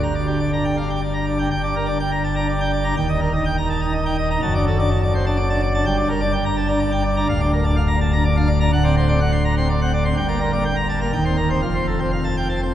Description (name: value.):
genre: classical, organ toccata.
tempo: 125 BPM.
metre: 3/4.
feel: straight.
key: G minor, Bb major from 7.3 s.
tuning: A4 = 442 Hz.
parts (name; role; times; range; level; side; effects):
pipe organ, plenum; solo; 0.0-12.7 s; D1 to C6; -17 LUFS; equal; none.
room: wet cathedral reverb, RT60 5.5 s.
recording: heard from further back in the room.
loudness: -17 LUFS.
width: side -11 dB against mid.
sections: 0.0-1.5 A section; 1.5-12.7 A section.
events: none.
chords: 0.0 Gm; 3.0 Eb; 4.4 D/F#; 5.9 Gm; 7.3 Bb/D; 8.7 D7; 10.2 Gm; 11.1 Cm7/Eb; 11.6 F.